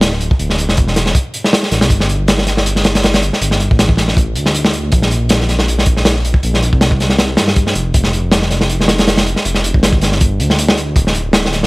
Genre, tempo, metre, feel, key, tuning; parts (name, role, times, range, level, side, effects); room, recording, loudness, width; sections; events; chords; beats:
drum and bass, jungle; 159 BPM; 4/4; swing 54% on 16ths; G minor; A4 = 441 Hz
dark detuned saw bass; bass; 0.0-11.7 s; D1 to G2; -16 LUFS; equal
crunchy breakbeat drum kit; drums; 0.0-11.7 s; hi-hat, kick drum, snare drum; -12 LUFS; equal
little or no reverb; vinyl crackle; -11 LUFS; side -24 dB against mid
0.0-1.9 A section; 1.9-11.7 A section
drop 0.0-1.9, 1.9-11.7
0.02 | 0.40 0.77 1.15 1.53 | 1.90 2.28 2.66 3.04 | 3.41 3.79 4.17 4.55 | 4.92 5.30 5.68 6.05 | 6.43 6.81 7.19 7.57 | 7.94 8.32 8.70 9.07 | 9.45 9.83 10.21 10.58 | 10.96 11.34